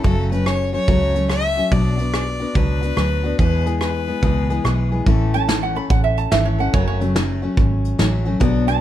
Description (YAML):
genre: honky-tonk and classic country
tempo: 143 BPM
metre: 4/4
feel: swing 65% on 8ths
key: A major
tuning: A4 = 440 Hz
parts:
  - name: clear fiddle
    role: melody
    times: 0.0-4.9 s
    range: A4 to E5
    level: -24 LUFS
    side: left 2 dB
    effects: none
  - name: picked steel-string acoustic guitar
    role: accompaniment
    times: 0.0-8.8 s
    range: E2 to A4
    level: -22 LUFS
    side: left 4 dB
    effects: none
  - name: vintage muted fingered electric bass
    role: bass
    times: 0.0-8.8 s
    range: F#1 to E2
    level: -21 LUFS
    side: right 1 dB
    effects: none
  - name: soft brush drum kit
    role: drums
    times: 0.0-8.7 s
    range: hi-hat, kick drum, rim click, snare drum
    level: -20 LUFS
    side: right 1 dB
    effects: none
  - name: lap resonator guitar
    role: second line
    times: 5.3-8.8 s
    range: C#5 to B5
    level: -22 LUFS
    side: right 7 dB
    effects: none
room: little or no reverb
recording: none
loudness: -16 LUFS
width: side -12 dB against mid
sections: 0.0-5.1 A section; 5.1-8.8 B section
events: resonator guitar played with a steel bar solo 5.1-8.8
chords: 0.0 F#m; 1.7 Bm; 3.4 E; 5.1 A; 6.7 F#m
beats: | 0.04 0.46 0.88 1.30 | 1.72 2.13 2.55 2.97 | 3.39 3.81 4.23 4.64 | 5.06 5.48 5.90 6.32 | 6.74 7.15 7.57 7.99 | 8.41